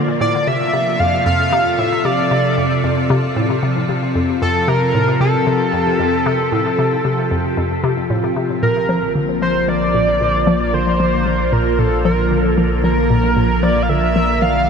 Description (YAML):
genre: ambient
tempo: 114 BPM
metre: 4/4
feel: straight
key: Bb major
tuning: A4 = 441 Hz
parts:
  - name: evolving wavetable pad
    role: sustained chords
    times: 0.0-14.7 s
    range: C3 to Bb4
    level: -19 LUFS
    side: equal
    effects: ensemble chorus, built-in reverb, phaser
  - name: hollow square pluck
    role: riff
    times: 0.0-14.7 s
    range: F2 to F3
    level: -20 LUFS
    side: left 2 dB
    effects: chorus, vintage 12-bit sampler grit, ping-pong delay
  - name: pulse-width lead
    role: melody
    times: 0.2-14.7 s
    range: A4 to F5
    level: -18 LUFS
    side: equal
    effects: chorus, ping-pong delay
  - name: warm sub bass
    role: bass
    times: 8.6-14.7 s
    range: Bb1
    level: -22 LUFS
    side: equal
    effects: none
room: wet huge ambient reverb, RT60 7.2 s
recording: none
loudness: -14 LUFS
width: side -6 dB against mid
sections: 0.0-8.6 A section; 8.6-14.7 B section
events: none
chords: 0.2 F; 8.6 Bb